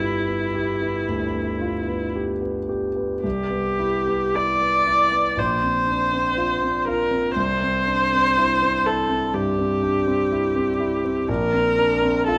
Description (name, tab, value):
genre	classical, impressionist duo for viola and grand piano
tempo	53-62 BPM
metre	4/4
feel	rubato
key	unclear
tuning	A4 = 440 Hz
part	rich viola	melody	0.0-12.4 s	E4 to D5	-23 LUFS	equal	none
part	warm concert grand piano	accompaniment	0.0-12.4 s	G1 to G4	-27 LUFS	equal	none
room	moderate concert hall reverb, RT60 2.1 s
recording	close, detailed microphones, vinyl crackle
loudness	-22 LUFS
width	mono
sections	0.0-12.4 A section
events	none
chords	0.0 G6; 3.2 Cmaj7; 5.4 Bbadd9; 7.4 Cadd9; 11.3 Bbadd9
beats	0.01 1.09 2.16 | 3.25 4.35 5.38 6.39 | 7.38 8.37 9.35 10.31 | 11.29 12.27